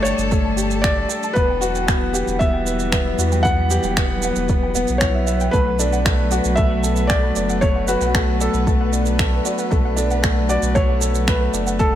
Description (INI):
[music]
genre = piano and strings electronica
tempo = 115 BPM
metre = 4/4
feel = straight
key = B minor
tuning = A4 = 440 Hz
[part]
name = felt-muted upright piano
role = melody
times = 0.0-12.0 s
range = A4 to F#5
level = -24 LUFS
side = equal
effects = ping-pong delay
[part]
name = dark string quartet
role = sustained chords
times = 0.0-12.0 s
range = E3 to A5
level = -27 LUFS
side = right 1 dB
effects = sidechain pumping
[part]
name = warm upright piano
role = riff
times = 0.0-12.0 s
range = A3 to E5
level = -23 LUFS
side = left 2 dB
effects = ping-pong delay
[part]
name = warm sub bass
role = bass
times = 0.0-12.0 s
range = E1 to E2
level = -22 LUFS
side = equal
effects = sidechain pumping
[part]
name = warbly dusty pluck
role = arpeggios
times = 0.1-12.0 s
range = A4 to A5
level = -31 LUFS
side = right 1 dB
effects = chorus, sidechain pumping, ping-pong delay
[part]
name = electronic shaker and finger snaps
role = drums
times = 0.1-11.9 s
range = none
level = -26 LUFS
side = right 2 dB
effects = none
[part]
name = electronic kick drum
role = drums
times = 0.3-11.9 s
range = none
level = -20 LUFS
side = equal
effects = none
[sound]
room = light reverb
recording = none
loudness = -16 LUFS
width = side -11 dB against mid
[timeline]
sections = 0.0-12.0 A section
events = none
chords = 0.0 Gsus2; 1.4 Emadd9; 5.5 Bm7